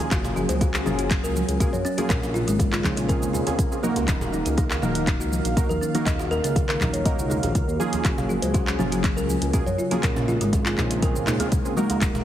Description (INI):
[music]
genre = afro house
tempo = 121 BPM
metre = 4/4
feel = straight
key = Eb dorian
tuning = A4 = 440 Hz
[part]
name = warm analog pad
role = sustained chords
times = 0.0-12.2 s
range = Db3 to F5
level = -30 LUFS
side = left 1 dB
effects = chorus, sidechain pumping
[part]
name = warm analog keys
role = stabs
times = 0.0-12.2 s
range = Bb3 to Bb4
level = -30 LUFS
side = right 2 dB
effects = chorus, sidechain pumping, ping-pong delay
[part]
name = afro-pop drum kit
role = drums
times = 0.0-12.2 s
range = handclaps, hi-hat, shaker, toms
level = -30 LUFS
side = equal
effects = none
[part]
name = congas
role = percussion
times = 0.0-12.1 s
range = none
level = -32 LUFS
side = equal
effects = none
[part]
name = kalimba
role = arpeggios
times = 0.1-12.1 s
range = Ab3 to Eb5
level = -28 LUFS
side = equal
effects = sidechain pumping, ping-pong delay
[part]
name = smooth synth bass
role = bass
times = 0.1-12.2 s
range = Eb1 to Bb2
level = -28 LUFS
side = equal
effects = sidechain pumping
[part]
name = electronic kick drum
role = drums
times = 0.1-12.1 s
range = none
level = -24 LUFS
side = equal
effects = none
[part]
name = djembe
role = percussion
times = 0.1-12.2 s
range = none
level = -34 LUFS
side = right 1 dB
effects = none
[sound]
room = light reverb, digital ambience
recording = heavily compressed radio sound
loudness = -20 LUFS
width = side -11 dB against mid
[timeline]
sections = 0.0-12.2 A section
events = none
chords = 0.1 Gbmaj7; 2.1 Bbm7; 4.1 Ebm; 8.1 Gbmaj7; 10.0 Bbm7